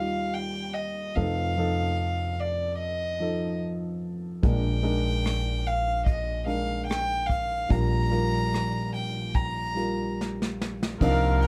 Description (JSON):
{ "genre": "acoustic folk-pop ballad", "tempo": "73 BPM", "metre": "4/4", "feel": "straight", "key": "unclear", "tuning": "A4 = 442 Hz", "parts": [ { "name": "rich violin", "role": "melody", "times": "0.0-11.5 s", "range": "D5 to Bb5", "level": "-32 LUFS", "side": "equal", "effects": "none" }, { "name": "warm upright piano", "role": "accompaniment", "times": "0.0-11.5 s", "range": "F1 to Bb4", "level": "-33 LUFS", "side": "equal", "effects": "none" }, { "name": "upright bass", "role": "bass", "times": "0.0-11.5 s", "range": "Bb1 to F2", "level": "-32 LUFS", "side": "equal", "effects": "none" }, { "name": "vintage brush drum kit", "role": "drums", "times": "4.4-11.5 s", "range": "crash cymbal, hi-hat, kick drum, ride cymbal, rim click, snare drum", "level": "-30 LUFS", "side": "equal", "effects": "none" }, { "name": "warm viola", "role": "second line", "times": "11.0-11.5 s", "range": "Bb4", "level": "-31 LUFS", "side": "equal", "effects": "none" }, { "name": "warm symphonic string section", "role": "sustained chords", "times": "11.0-11.5 s", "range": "C3 to F4", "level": "-39 LUFS", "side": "equal", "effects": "none" } ], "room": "little or no reverb", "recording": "close, detailed microphones", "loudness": "-27 LUFS", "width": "mono", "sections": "0.0-11.0 A section", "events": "drum fill 10.2-11.0", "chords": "0.0 Eb; 1.2 F7; 4.4 Bb7; 7.7 Gm7/Bb" }